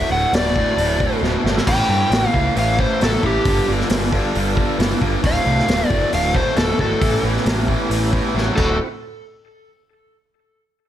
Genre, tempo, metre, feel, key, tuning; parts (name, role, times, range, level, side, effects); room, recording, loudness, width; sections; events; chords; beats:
blues rock power trio and southern rock; 135 BPM; 4/4; straight; D mixolydian; A4 = 440 Hz
overdriven slide guitar; melody; 0.0-8.8 s; G4 to G5; -21 LUFS; equal; plate reverb
overdriven tonewheel organ; sustained chords; 0.0-8.9 s; E3 to C5; -29 LUFS; right 4 dB; slow rotary speaker, chorus vibrato
distorted electric guitar; riff; 0.0-8.8 s; D2 to F#4; -21 LUFS; left 1 dB; overdrive
growling picked electric bass; bass; 0.0-8.8 s; D1 to G2; -22 LUFS; equal; overdrive
vintage drum kit; drums; 0.3-8.7 s; crash cymbal, hi-hat, kick drum, snare drum; -22 LUFS; equal
light reverb; -16 LUFS; side -11 dB against mid
0.0-8.8 A section; 8.8-10.6 B section
drum fill 1.2-1.7, 8.4-8.8
0.0 D7; 1.7 A7; 3.5 G7; 5.2 D7; 7.0 A7; 8.6 D7; 8.8 C
0.34 0.78 1.23 | 1.67 2.12 2.56 3.00 | 3.45 3.90 4.34 4.79 | 5.23 5.68 6.12 6.57 | 7.02 7.46 7.91 8.35 | 8.80